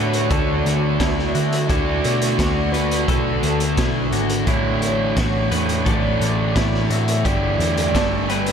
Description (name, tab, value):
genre	rock, shoegaze and dream pop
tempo	86 BPM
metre	4/4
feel	straight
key	D major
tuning	A4 = 440 Hz
part	warm velvety synth lead	melody	0.0-8.5 s	A4 to E5	-27 LUFS	equal	chorus, tape echo
part	direct-recorded clean electric guitar	arpeggios	0.0-8.5 s	E4 to B4	-28 LUFS	left 6 dB	lush chorus, tape echo
part	raw garage guitar	riff	0.0-8.5 s	A2 to G4	-23 LUFS	right 7 dB	overdrive, reverse reverb
part	thick fuzz guitar	riff	0.0-8.5 s	G2 to D4	-25 LUFS	left 6 dB	distortion, lush chorus
part	hollow-body short-scale picked electric bass	bass	0.0-8.5 s	G1 to D3	-24 LUFS	equal	none
part	raw garage drum kit	drums	0.1-8.5 s	hi-hat, kick drum, snare drum	-24 LUFS	equal	none
room	wet huge ambient reverb, RT60 8.0 s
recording	dreamy mix soaked in reverb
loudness	-17 LUFS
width	side -7 dB against mid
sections	0.0-8.5 A section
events	none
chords	0.0 D; 4.5 Asus4; 7.3 Gsus2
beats	0.30 1.00 | 1.69 2.39 3.08 3.78 | 4.47 5.17 5.86 6.56 | 7.26 7.95